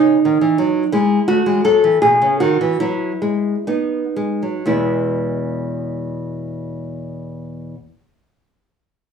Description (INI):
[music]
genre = classical, baroque-style dance for nylon-string guitar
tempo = 58-92 BPM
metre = 3/4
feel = rubato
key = E major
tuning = A4 = 436 Hz
[part]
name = nylon-string guitar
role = solo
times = 0.0-7.7 s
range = E2 to A4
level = -16 LUFS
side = equal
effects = none
[sound]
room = moderate studio reverb, RT60 0.6 s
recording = dry, gritty hardware recording, studio reverb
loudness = -15 LUFS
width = side -6 dB against mid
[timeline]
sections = 0.0-4.7 A section; 4.7-9.1 B section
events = slowing down 0.0-4.7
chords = 0.0 C#m; 1.3 F#m7; 2.0 E/B; 3.7 B; 4.7 E